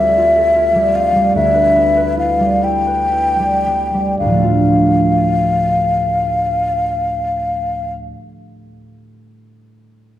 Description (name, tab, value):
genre	classical, impressionist duo for flute and harp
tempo	36-52 BPM (dotted quarters)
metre	6/8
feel	rubato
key	D dorian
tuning	A4 = 440 Hz
part	mellow hollow concert flute	melody	0.0-7.9 s	E5 to G5	-14 LUFS	left 1 dB	none
part	concert harp	accompaniment	0.0-8.2 s	D2 to D6	-17 LUFS	right 1 dB	none
room	wet scoring stage reverb, RT60 1.6 s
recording	dark, warm production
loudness	-12 LUFS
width	side -12 dB against mid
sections	0.0-4.2 A section; 4.2-7.2 B section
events	slowing down 0.0-4.2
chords	0.0 Dm11; 1.4 Em7/D; 4.2 Dm